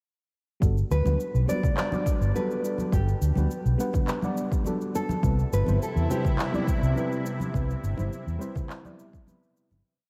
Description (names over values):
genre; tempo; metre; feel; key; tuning
sunset chillout; 104 BPM; 4/4; straight; G major; A4 = 440 Hz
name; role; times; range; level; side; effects
mellow FM electric piano; accompaniment; 0.6-9.8 s; G3 to F#5; -34 LUFS; equal; chorus, tremolo, low-pass filter, tape echo
fretless electric bass; bass; 0.6-9.8 s; G1 to E2; -26 LUFS; equal; ensemble chorus
electronic cabasa and handclaps; drums; 0.6-9.8 s; none; -40 LUFS; equal; none
electronic kick drum; drums; 0.6-9.2 s; none; -29 LUFS; equal; none
nylon-string guitar; melody; 0.9-9.2 s; G4 to D5; -36 LUFS; equal; tape echo
congas; percussion; 1.1-9.8 s; none; -37 LUFS; equal; none
lush unison pad; sustained chords; 5.5-9.8 s; C3 to E4; -36 LUFS; equal; chorus, phaser
room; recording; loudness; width
moderate cathedral reverb, RT60 5.2 s; dreamy mix soaked in reverb; -26 LUFS; mono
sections
0.6-9.8 groove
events
fade-out 6.8-9.8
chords
0.6 Gmaj9; 5.2 Cmaj7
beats
| 0.62 1.19 1.77 2.35 | 2.92 3.50 4.08 4.66 | 5.23 5.81 6.38 6.96 | 7.54 8.12 8.69 9.27